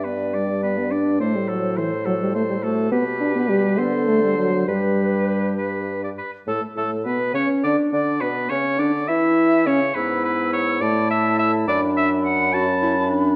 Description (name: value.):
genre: quick classical-period movement for wind quintet.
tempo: 70 BPM (dotted quarters).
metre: 6/8.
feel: straight.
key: G major, D major from 6.5 s.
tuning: A4 = 440 Hz.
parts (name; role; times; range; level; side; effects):
mellow hollow concert flute; melody; 0.0-13.4 s; G4 to E6; -30 LUFS; equal; none.
clear oboe; second line; 0.0-13.1 s; A4 to A5; -27 LUFS; equal; none.
clear clarinet; accompaniment; 0.0-13.4 s; A3 to A4; -28 LUFS; equal; none.
warm bassoon; bass; 0.0-13.3 s; F#2 to E3; -29 LUFS; equal; none.
mellow French horn; accompaniment; 0.3-13.4 s; E3 to E4; -25 LUFS; equal; none.
room: wet recital hall reverb, RT60 1.5 s.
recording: dark, warm production.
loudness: -21 LUFS.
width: mono.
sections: 0.0-6.5 A section; 6.5-13.4 B section.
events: none.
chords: 0.0 G; 1.2 F#dim/A; 2.9 G/B; 3.8 D5; 4.7 G; 6.5 Asus2; 7.4 N.C.; 8.2 E5/B; 10.0 E/G#; 10.8 A5; 11.7 D/F#.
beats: 0.34 | 1.20 2.06 | 2.92 3.79 | 4.68 5.58 | 6.48 7.35 | 8.22 9.09 | 9.96 10.82 | 11.68 12.53.